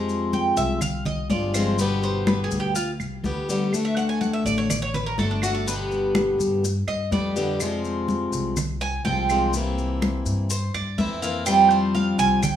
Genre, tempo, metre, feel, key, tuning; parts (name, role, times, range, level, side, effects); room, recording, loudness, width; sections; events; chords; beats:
latin, Cuban son and guajira; 124 BPM; 4/4; straight; A4 = 440 Hz
picked plugged-in swing-style acoustic guitar; accompaniment; 0.0-12.5 s; B2 to G4; -24 LUFS; left 3 dB
upright bass; bass; 0.0-12.6 s; G1 to G2; -28 LUFS; equal
congas; percussion; 0.1-12.6 s; -27 LUFS; left 1 dB
maracas; percussion; 0.1-12.6 s; -34 LUFS; left 6 dB
Cuban tres; arpeggios; 0.3-12.6 s; D4 to Ab5; -25 LUFS; right 5 dB
claves; percussion; 0.8-12.6 s; -38 LUFS; right 8 dB
light reverb, small room ambience; rough home demo mix, studio reverb; -21 LUFS; side -10 dB against mid
0.0-12.6 A section
Cuban tres solo 0.0-12.6
0.0 Fm; 1.8 G; 3.7 D; 5.7 G; 7.6 Fm; 9.5 C7; 11.5 Fsus2
0.33 0.82 1.30 | 1.79 2.27 2.76 3.25 | 3.73 4.22 4.70 5.19 | 5.67 6.16 6.64 7.12 | 7.61 8.09 8.57 9.05 | 9.54 10.02 10.50 10.98 | 11.47 11.95 12.43